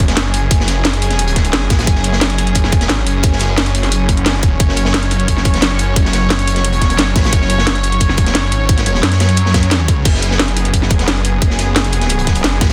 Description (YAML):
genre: dark technical drum and bass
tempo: 176 BPM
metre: 4/4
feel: straight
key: unclear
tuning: A4 = 439 Hz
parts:
  - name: dark studio string section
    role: sustained chords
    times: 0.0-12.7 s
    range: F#3 to C#5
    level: -22 LUFS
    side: equal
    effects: sidechain pumping
  - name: snarling distorted saw bass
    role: bass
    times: 0.0-12.7 s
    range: E1 to F#2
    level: -18 LUFS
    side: equal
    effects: distortion, tube saturation, sidechain pumping
  - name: crunchy breakbeat drum kit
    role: drums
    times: 0.0-12.7 s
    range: hi-hat, snare drum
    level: -25 LUFS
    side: equal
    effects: high-pass filter on hats, high-pass filter on snare, high-pass filter on room
  - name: drum and bass drum kit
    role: drums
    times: 0.0-12.7 s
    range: crash cymbal, hi-hat, snare drum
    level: -20 LUFS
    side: equal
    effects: none
  - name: electronic kick drum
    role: drums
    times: 0.0-12.7 s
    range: none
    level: -16 LUFS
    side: equal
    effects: none
room: studio reverb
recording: dense, heavily limited modern master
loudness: -14 LUFS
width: mono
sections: 0.0-12.7 A section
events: none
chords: 0.0 F#5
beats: 0.17 | 0.51 0.85 1.19 1.53 | 1.87 2.21 2.55 2.90 | 3.24 3.58 3.92 4.26 | 4.60 4.94 5.28 5.62 | 5.96 6.30 6.64 6.99 | 7.33 7.67 8.01 8.35 | 8.69 9.03 9.37 9.71 | 10.05 10.39 10.74 11.08 | 11.42 11.76 12.10 12.44